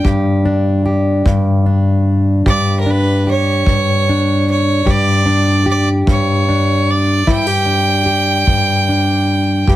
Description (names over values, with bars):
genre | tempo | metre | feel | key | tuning
acoustic country blues, solo or duo | 50 BPM (dotted quarters) | 12/8 | straight | unclear | A4 = 440 Hz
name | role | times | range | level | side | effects
bright fiddle | melody | 0.0-9.7 s | Bb4 to G5 | -17 LUFS | right 2 dB | none
fingerpicked plugged-in steel-string acoustic guitar | accompaniment | 0.0-9.8 s | G2 to G4 | -13 LUFS | left 1 dB | none
kick drum | drums | 0.0-9.8 s | none | -17 LUFS | equal | none
room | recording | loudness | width
light reverb | heavily compressed radio sound | -12 LUFS | side -14 dB against mid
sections
0.0-9.8 A section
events
none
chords
0.0 G5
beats
0.05 1.26 | 2.46 3.67 4.87 6.08 | 7.28 8.48 9.68